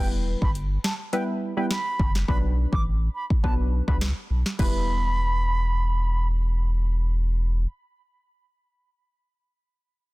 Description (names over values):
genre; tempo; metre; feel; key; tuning
dancehall; 104 BPM; 4/4; straight; E minor; A4 = 439 Hz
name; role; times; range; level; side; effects
bright reedy wooden flute; melody; 0.0-6.3 s; G5 to D6; -31 LUFS; right 2 dB; tape echo
wavetable chord stab; accompaniment; 0.0-7.7 s; F#3 to B4; -30 LUFS; equal; sidechain pumping
round analog bass; bass; 0.0-7.7 s; E1 to C#2; -24 LUFS; equal; none
afro-pop drum kit; drums; 0.4-4.7 s; crash cymbal, hi-hat, kick drum, snare drum; -25 LUFS; equal; none
room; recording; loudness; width
digital ambience; dense, heavily limited modern master; -22 LUFS; side -21 dB against mid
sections
0.0-4.6 A section; 4.6-6.9 B section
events
none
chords
0.0 Em; 2.3 Bm; 4.6 Em